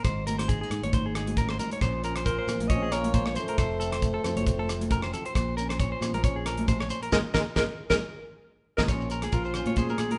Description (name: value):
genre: highlife guitar band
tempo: 136 BPM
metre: 4/4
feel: swing 54% on 16ths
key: Bb minor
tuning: A4 = 440 Hz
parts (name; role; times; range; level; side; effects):
- nylon-string guitar; accompaniment; 0.0-10.2 s; F2 to A4; -39 LUFS; equal; none
- clean electric guitar; arpeggios; 0.0-10.2 s; Ab4 to Eb5; -36 LUFS; equal; none
- fingered electric bass; bass; 0.0-10.2 s; F1 to Bb2; -36 LUFS; equal; none
- damped 70s drum kit; drums; 0.0-10.2 s; hi-hat, kick drum, rim click, snare drum; -32 LUFS; equal; none
- shekere; percussion; 0.0-10.1 s; none; -38 LUFS; equal; none
- congas; percussion; 0.3-10.2 s; none; -36 LUFS; equal; none
- clear alto saxophone; melody; 2.3-10.2 s; F4 to Eb5; -34 LUFS; equal; none
- warm trombone; second line; 2.3-8.8 s; F3 to C4; -38 LUFS; equal; none
room: moderate large studio reverb, RT60 1.1 s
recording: band playing live in one room, nothing above 11.0 kHz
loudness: -28 LUFS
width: mono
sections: 0.0-8.9 A section; 8.9-10.2 B section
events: band accent 7.1-8.9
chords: 0.0 Absus2; 1.8 Bbmadd9; 3.6 F; 5.4 Bbmadd9; 7.1 Absus2; 8.9 Bbmadd9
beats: | 0.04 0.48 0.92 1.37 | 1.81 2.25 2.69 3.14 | 3.58 4.02 4.47 4.91 | 5.35 5.79 6.24 6.68 | 7.12 7.56 8.00 8.45 | 8.89 9.33 9.77